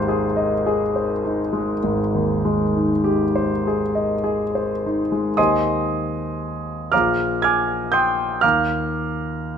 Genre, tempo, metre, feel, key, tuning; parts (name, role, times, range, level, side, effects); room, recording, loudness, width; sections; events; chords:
classical, impressionist solo piano; 33-40 BPM (dotted quarters); 6/8; rubato; Eb major; A4 = 441 Hz
warm concert grand piano; solo; 0.0-9.6 s; Ab1 to Ab6; -18 LUFS; equal
light reverb; close, detailed microphones; -18 LUFS; side -7 dB against mid
0.0-5.4 A section; 5.4-9.6 B section
0.0 Abmaj7; 5.4 Eb6; 6.9 Bb9sus4; 8.4 Ebsus2